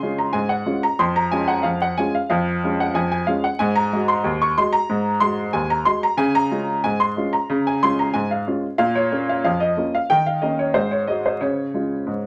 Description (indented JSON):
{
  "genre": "ragtime piano",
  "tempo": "92 BPM",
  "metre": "2/4",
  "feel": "straight",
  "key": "Db major",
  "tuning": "A4 = 440 Hz",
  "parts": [
    { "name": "clear upright piano", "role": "solo", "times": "0.0-12.3 s", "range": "Eb2 to Db6", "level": "-21 LUFS", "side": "equal", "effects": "none" }
  ],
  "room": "moderate studio reverb, RT60 0.6 s",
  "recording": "vinyl crackle",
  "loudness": "-21 LUFS",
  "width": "mono",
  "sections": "0.0-12.3 A section",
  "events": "none",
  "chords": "0.0 Db; 1.0 Db/F; 3.6 Ab5; 6.2 Db; 8.8 Bbm; 10.1 Eb5; 10.7 Ab5; 11.4 Db"
}